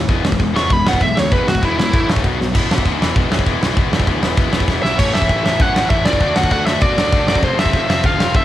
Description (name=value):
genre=punk rock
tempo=196 BPM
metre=4/4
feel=straight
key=unclear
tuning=A4 = 441 Hz
part: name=tight distorted guitar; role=riff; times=0.0-8.4 s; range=A2 to F#4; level=-21 LUFS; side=left 9 dB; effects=distortion, cassette tape
part: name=tight distorted guitar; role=riff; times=0.0-8.4 s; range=E2 to D4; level=-26 LUFS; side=right 9 dB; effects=distortion, cassette tape
part: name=fuzz picked electric bass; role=bass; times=0.0-8.4 s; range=E1 to B2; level=-24 LUFS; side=equal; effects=overdrive
part: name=big rock drum kit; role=drums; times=0.1-8.4 s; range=crash cymbal, kick drum, snare drum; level=-16 LUFS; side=equal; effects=cassette tape
part: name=bluesy overdriven lead guitar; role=melody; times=0.6-2.1, 4.8-8.4 s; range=E4 to C#6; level=-18 LUFS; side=right 1 dB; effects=distortion, cassette tape
room=small room ambience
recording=home recording on cassette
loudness=-13 LUFS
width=side -13 dB against mid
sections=0.0-2.5 A section; 2.5-5.0 B section; 5.0-8.4 C section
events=lead electric guitar solo 0.0-2.5; drum fill 2.4, 4.7-5.0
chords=0.1 E; 1.9 A5; 2.2 B5; 2.5 E; 5.0 A; 6.2 D; 7.4 F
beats=| 0.10 0.40 0.71 1.02 | 1.32 1.63 1.93 2.24 | 2.54 2.85 3.16 3.46 | 3.77 4.07 4.38 4.68 | 4.99 5.29 5.60 5.91 | 6.21 6.52 6.82 7.13 | 7.43 7.74 8.04 8.35